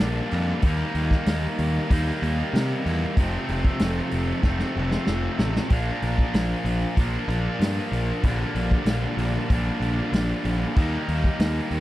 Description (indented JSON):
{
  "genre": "classic rock",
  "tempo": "95 BPM",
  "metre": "4/4",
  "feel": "straight",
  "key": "unclear",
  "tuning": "A4 = 441 Hz",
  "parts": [
    { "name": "tight distorted guitar", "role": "riff", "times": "0.0-11.8 s", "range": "F2 to Eb4", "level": "-27 LUFS", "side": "equal", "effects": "distortion" },
    { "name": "fuzz picked electric bass", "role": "bass", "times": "0.0-11.8 s", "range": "F1 to C3", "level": "-25 LUFS", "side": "equal", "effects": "overdrive" },
    { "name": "vintage drum kit", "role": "drums", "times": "0.0-11.8 s", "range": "hi-hat, kick drum, snare drum", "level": "-22 LUFS", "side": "equal", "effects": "none" }
  ],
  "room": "little or no reverb",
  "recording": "dry, close 1970s-style studio recording",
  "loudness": "-21 LUFS",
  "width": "side -15 dB against mid",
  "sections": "0.0-11.8 A section",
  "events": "drum fill 4.4-5.7",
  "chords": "0.0 Bb; 0.6 Eb; 3.2 F; 5.7 Bb; 8.2 Gm/Bb; 10.8 Eb"
}